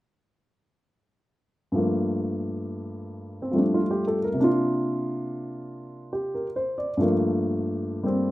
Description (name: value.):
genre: solo jazz.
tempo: 92 BPM.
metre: 4/4.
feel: swing 66% on 8ths, rubato.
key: unclear.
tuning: A4 = 440 Hz.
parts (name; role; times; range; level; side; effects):
warm grand piano; solo; 1.7-8.3 s; G2 to D5; -24 LUFS; equal; none.
room: moderate studio reverb, RT60 0.6 s.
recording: rough home demo mix.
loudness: -23 LUFS.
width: side -16 dB against mid.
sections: 1.7-8.3 A section.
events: none.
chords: 1.7 Gm9; 4.4 C9sus4; 7.0 Gm9.